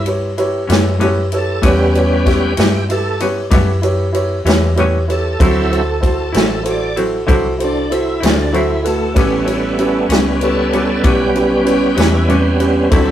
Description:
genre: slow blues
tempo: 64 BPM (dotted quarters)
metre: 12/8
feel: straight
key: A mixolydian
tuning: A4 = 441 Hz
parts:
  - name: bright tonewheel organ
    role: sustained chords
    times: 0.0-13.1 s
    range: F#3 to D5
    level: -17 LUFS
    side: equal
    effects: chorus vibrato, slow rotary speaker
  - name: vintage muted fingered electric bass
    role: bass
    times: 0.0-13.1 s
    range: A1 to G2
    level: -19 LUFS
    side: equal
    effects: none
  - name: warm upright piano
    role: accompaniment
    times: 0.1-13.1 s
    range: C4 to E5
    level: -18 LUFS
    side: right 2 dB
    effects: none
  - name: natural country drum kit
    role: drums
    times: 0.1-13.1 s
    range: kick drum, ride cymbal, snare drum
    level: -18 LUFS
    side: equal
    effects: none
  - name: semi-hollow electric guitar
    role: accompaniment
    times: 0.7-13.1 s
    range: A2 to E4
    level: -21 LUFS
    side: left 3 dB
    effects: tremolo
room: light reverb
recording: rough rehearsal-room recording, tube saturation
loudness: -12 LUFS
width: side -11 dB against mid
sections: 0.0-13.1 A section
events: tonewheel organ solo 0.0-13.1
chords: 0.0 A9; 5.4 D9; 9.2 A9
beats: 0.69 | 1.63 2.57 3.51 4.45 | 5.39 6.33 7.28 8.22 | 9.16 10.10 11.04 11.98 | 12.93

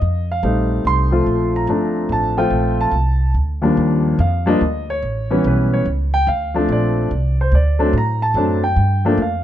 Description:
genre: jazz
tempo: 144 BPM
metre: 3/4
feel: swing 65% on 8ths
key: Bb major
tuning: A4 = 439 Hz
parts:
  - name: warm grand piano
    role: melody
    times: 0.0-9.4 s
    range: Eb2 to C6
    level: -17 LUFS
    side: left 1 dB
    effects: none
  - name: upright bass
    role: bass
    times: 0.0-9.4 s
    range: G1 to A2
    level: -18 LUFS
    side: equal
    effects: none
room: light reverb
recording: dark, warm production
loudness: -15 LUFS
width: side -11 dB against mid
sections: 0.0-3.8 A section; 3.8-9.4 B section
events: none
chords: 0.0 F7; 1.3 Bbmaj7; 3.8 Ebmaj9; 5.0 A7; 6.3 Dm7; 7.5 D7; 8.8 G7(no3)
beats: | 0.01 0.43 0.85 | 1.26 1.68 2.10 | 2.52 2.94 3.35 | 3.77 4.19 4.61 | 5.02 5.44 5.86 | 6.27 6.69 7.11 | 7.52 7.94 8.36 | 8.78 9.19

